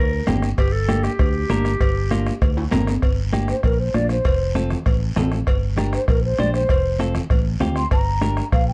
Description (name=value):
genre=latin, cumbia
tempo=196 BPM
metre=4/4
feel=straight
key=G minor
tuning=A4 = 441 Hz
part: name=growling clarinet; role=second line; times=0.0-2.7 s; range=G4 to Bb4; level=-28 LUFS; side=equal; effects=none
part: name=fingered electric bass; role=bass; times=0.0-8.7 s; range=F1 to D2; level=-25 LUFS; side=equal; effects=none
part: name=clean electric guitar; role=accompaniment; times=0.3-8.4 s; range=Bb3 to C5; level=-27 LUFS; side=equal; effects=none
part: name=bombo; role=percussion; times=0.3-8.7 s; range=none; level=-24 LUFS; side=equal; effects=none
part: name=congas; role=percussion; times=0.3-8.7 s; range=none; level=-31 LUFS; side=equal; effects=none
part: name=guiro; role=percussion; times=0.3-8.7 s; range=none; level=-43 LUFS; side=equal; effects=none
part: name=timbales and cowbell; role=percussion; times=0.3-8.7 s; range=none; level=-31 LUFS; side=equal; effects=none
part: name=mellow hollow concert flute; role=melody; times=3.5-8.7 s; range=Bb4 to C6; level=-26 LUFS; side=equal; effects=none
room=light reverb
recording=dark, warm production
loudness=-20 LUFS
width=mono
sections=0.0-3.0 A section; 3.0-8.7 B section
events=clarinet solo 0.0-3.0; drum fill 2.6-3.0; flute solo 3.0-8.7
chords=0.0 Gm; 4.3 F; 5.5 Gm; 6.7 F; 7.9 Gm